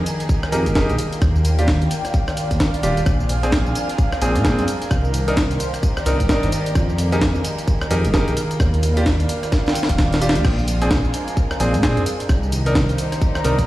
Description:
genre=UK garage, two-step garage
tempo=130 BPM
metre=4/4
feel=swing 60% on 16ths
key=unclear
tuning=A4 = 440 Hz
part: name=muted studio violin section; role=sustained chords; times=0.0-13.7 s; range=G3 to Ab4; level=-30 LUFS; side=equal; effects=sidechain pumping
part: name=dark detuned saw bass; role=bass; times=0.0-13.7 s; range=Eb1 to Bb2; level=-20 LUFS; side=equal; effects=none
part: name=airy breathy pad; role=texture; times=0.0-13.7 s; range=Eb3 to Bb5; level=-27 LUFS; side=right 1 dB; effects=chorus, phaser, sidechain pumping
part: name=breakbeat sampler-style drum kit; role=drums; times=0.1-13.7 s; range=crash cymbal, hi-hat, rim click, snare drum, tambourine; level=-24 LUFS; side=equal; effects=none
part: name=electronic kick drum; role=drums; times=0.3-13.7 s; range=none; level=-19 LUFS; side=equal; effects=none
part: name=bright concert grand piano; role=stabs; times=0.5-13.6 s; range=C4 to Bb4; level=-24 LUFS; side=right 1 dB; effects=low-pass filter, dub echo
room=light reverb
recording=played on a big sound system in a bare room, stone room reverb, vinyl crackle, lossy compression artefacts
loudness=-16 LUFS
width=side -16 dB against mid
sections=0.0-13.7 A section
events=drum fill 9.5-10.4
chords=0.0 Fm11; 1.0 Ebmaj9; 3.1 Bb7; 4.9 Cm9; 6.8 Fm11; 8.4 Ebmaj9; 10.4 Bb7; 12.3 Cm9

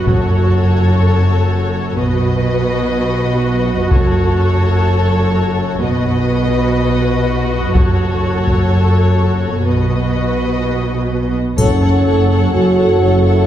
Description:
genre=cinematic, epic orchestral film score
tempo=125 BPM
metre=4/4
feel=straight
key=F# dorian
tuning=A4 = 439 Hz
part: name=rich studio violin section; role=melody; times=0.0-13.5 s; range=C#5 to F#5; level=-25 LUFS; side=left 4 dB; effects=none
part: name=warm symphonic violin section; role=second line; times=0.0-13.5 s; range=A4 to C#5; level=-22 LUFS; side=left 3 dB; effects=none
part: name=warm symphonic viola section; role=accompaniment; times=0.0-13.5 s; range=F#4 to A4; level=-21 LUFS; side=right 1 dB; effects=none
part: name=dark symphonic cello section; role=bass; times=0.0-13.4 s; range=F#2 to B2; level=-17 LUFS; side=right 1 dB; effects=none
part: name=rich symphonic double bass section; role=bass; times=0.0-13.4 s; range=F#1 to B1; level=-17 LUFS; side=right 1 dB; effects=none
part: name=taiko ensemble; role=drums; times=0.1-1.0, 3.9-4.8, 7.8-8.7, 11.6-12.5 s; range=none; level=-18 LUFS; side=equal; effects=none
part: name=dark French horn section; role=sustained chords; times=11.6-13.5 s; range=C#4 to F#4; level=-16 LUFS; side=equal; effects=none
part: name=mellow tuba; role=bass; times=11.6-13.4 s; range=F#1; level=-21 LUFS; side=right 2 dB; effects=none
part: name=triangle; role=percussion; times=11.6-12.5 s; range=none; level=-30 LUFS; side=left 5 dB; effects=none
room=wet concert hall reverb, RT60 2.0 s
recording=heard from further back in the room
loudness=-12 LUFS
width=side -11 dB against mid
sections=0.0-11.6 A section; 11.6-13.5 B section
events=none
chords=0.1 F#m; 2.0 B; 3.9 F#m; 5.8 B; 7.8 F#m; 9.7 B; 11.6 F#m

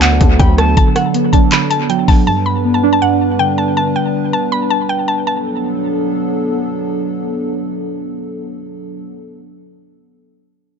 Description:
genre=hip hop, trap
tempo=160 BPM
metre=4/4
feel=half-time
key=D major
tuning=A4 = 437 Hz
part: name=mallet-like synth pluck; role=melody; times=0.0-6.4 s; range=F#5 to B5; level=-18 LUFS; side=left 1 dB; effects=chorus, dub echo
part: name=warbly lo-fi synth keys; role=accompaniment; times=0.0-4.3 s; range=G2 to D4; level=-16 LUFS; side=right 5 dB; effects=chorus, dub echo
part: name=dark analog pad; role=sustained chords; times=0.0-9.0 s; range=F#3 to B4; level=-19 LUFS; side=equal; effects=chorus
part: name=distorted 808-style bass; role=bass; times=0.0-0.8 s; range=D2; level=-13 LUFS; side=equal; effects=distortion
part: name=trap drum kit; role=drums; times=0.0-2.2 s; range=handclaps, hi-hat, kick drum, rim click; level=-13 LUFS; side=equal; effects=vintage 12-bit sampler grit, dub echo
part: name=concert flute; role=second line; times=0.4-0.8 s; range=A5 to B5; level=-27 LUFS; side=left 1 dB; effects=dub echo
room=light reverb, digital ambience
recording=echo-heavy mix, nothing above 7.8 kHz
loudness=-12 LUFS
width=side -6 dB against mid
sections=0.0-5.3 A section; 5.3-8.3 B section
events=none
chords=0.0 D6; 2.3 G; 5.3 D6

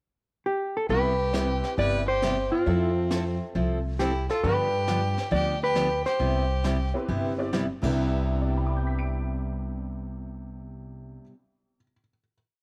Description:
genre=country, western swing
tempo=136 BPM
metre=4/4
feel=swing 68% on 8ths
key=C major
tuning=A4 = 441 Hz
part: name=hollow-body jazz guitar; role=melody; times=0.5-6.9 s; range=F4 to D5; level=-29 LUFS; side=equal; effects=none
part: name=clear fiddle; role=second line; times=0.9-6.9 s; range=C4 to B4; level=-35 LUFS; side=equal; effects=none
part: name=picked steel-string acoustic guitar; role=accompaniment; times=0.9-11.3 s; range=C3 to A4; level=-34 LUFS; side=equal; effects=none
part: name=upright bass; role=bass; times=0.9-11.2 s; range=G1 to G2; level=-31 LUFS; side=equal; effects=none
part: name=jazz brush drum kit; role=drums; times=0.9-7.9 s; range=brushed snare drum, crash cymbal, hi-hat, kick drum, snare drum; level=-40 LUFS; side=equal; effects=none
part: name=honky-tonk upright piano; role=accompaniment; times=1.3-12.3 s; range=C3 to D7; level=-38 LUFS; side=equal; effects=none
room=light reverb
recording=none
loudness=-26 LUFS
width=mono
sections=0.0-0.9 pickup bar; 0.9-8.0 A section; 8.0-11.5 final chord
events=none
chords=0.0 N.C.; 0.9 Cmaj7; 2.7 Fmaj7; 4.4 G7; 6.2 Cmaj7

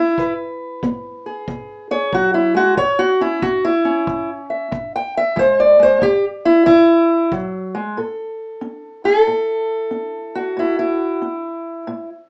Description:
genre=acoustic country blues, solo or duo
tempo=92 BPM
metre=4/4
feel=swing 64% on 8ths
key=A major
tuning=A4 = 445 Hz
part: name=fingerpicked steel-string acoustic guitar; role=melody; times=0.0-12.3 s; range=A2 to G5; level=-18 LUFS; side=equal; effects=none
part: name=kick drum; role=drums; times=0.2-7.5 s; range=none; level=-32 LUFS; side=equal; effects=none
room=moderate studio reverb, RT60 0.6 s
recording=rough home demo mix, small speaker sound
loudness=-17 LUFS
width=mono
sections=0.0-8.0 A section; 8.0-12.3 B section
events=steel-string acoustic guitar solo 0.0-8.0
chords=0.0 E; 2.8 A; 5.4 E; 8.0 A

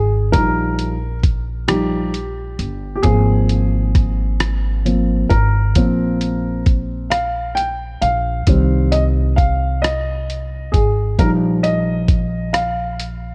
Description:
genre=six-eight pop ballad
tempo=44 BPM (dotted quarters)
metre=6/8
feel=straight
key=unclear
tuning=A4 = 440 Hz
part: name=dark upright piano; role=accompaniment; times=0.0-13.3 s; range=Eb3 to G5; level=-22 LUFS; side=equal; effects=none
part: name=upright bass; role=bass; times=0.0-13.3 s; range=G1 to C2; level=-22 LUFS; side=equal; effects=none
part: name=lo-fi sampler-style drum kit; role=drums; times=0.3-13.2 s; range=hi-hat, kick drum, rim click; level=-19 LUFS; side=equal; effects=none
room=studio reverb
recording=dark, warm production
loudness=-18 LUFS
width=mono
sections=0.0-13.3 A section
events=upright piano solo 0.0-13.3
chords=0.3 Ebadd9/Bb; 3.0 Ab6; 5.8 Bbsus2; 8.5 Cm; 11.2 Ebadd9/Bb

